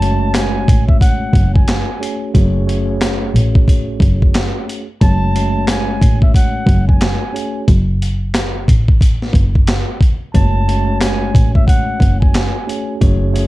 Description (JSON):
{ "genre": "hip hop, boom-bap hip-hop", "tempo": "90 BPM", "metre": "4/4", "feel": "swing 59% on 16ths", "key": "F# minor", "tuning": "A4 = 442 Hz", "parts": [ { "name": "trumpet with bucket mute", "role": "melody", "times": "0.0-13.0 s", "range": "E5 to A5", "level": "-23 LUFS", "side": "right 1 dB", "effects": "slapback echo, plate reverb" }, { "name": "mellow tine electric piano", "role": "accompaniment", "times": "0.0-13.5 s", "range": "G#3 to C#5", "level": "-21 LUFS", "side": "equal", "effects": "medium stereo tremolo, cassette tape" }, { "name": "dark double bass", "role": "bass", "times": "0.0-13.5 s", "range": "F#1 to A1", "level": "-16 LUFS", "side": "equal", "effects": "none" }, { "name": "boom bap sampler-style drum kit", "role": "drums", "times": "0.0-13.5 s", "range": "handclaps, hi-hat, kick drum, snare drum", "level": "-13 LUFS", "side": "equal", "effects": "none" } ], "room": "little or no reverb", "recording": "dark, warm production", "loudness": "-12 LUFS", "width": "side -18 dB against mid", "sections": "0.0-13.5 A section", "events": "none", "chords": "0.0 F#madd9", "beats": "0.34 1.01 1.68 | 2.34 3.01 3.68 4.34 | 5.01 5.68 6.34 7.01 | 7.68 8.34 9.01 9.68 | 10.34 11.01 11.68 12.34 | 13.01" }